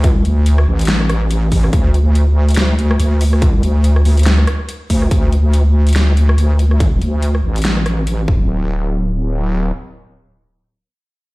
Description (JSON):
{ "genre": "deep dubstep", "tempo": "142 BPM", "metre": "4/4", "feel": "swing 57% on 16ths, half-time", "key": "unclear", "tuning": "A4 = 440 Hz", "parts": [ { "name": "wobble bass", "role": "bass", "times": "0.0-9.7 s", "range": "D1 to D2", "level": "-12 LUFS", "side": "equal", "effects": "chorus, tube saturation" }, { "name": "dubstep drum kit", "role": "drums", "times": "0.0-8.2 s", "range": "hi-hat, rim click, snare drum", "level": "-22 LUFS", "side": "equal", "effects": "none" }, { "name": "electronic kick drum", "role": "drums", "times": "0.0-8.4 s", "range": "none", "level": "-14 LUFS", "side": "equal", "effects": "none" } ], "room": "little or no reverb", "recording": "played on a big sound system in a bare room, stone room reverb", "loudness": "-12 LUFS", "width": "side -22 dB against mid", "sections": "0.0-5.1 A section; 5.1-8.5 B section; 8.5-11.3 C section", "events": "drop 0.0-5.1", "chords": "none" }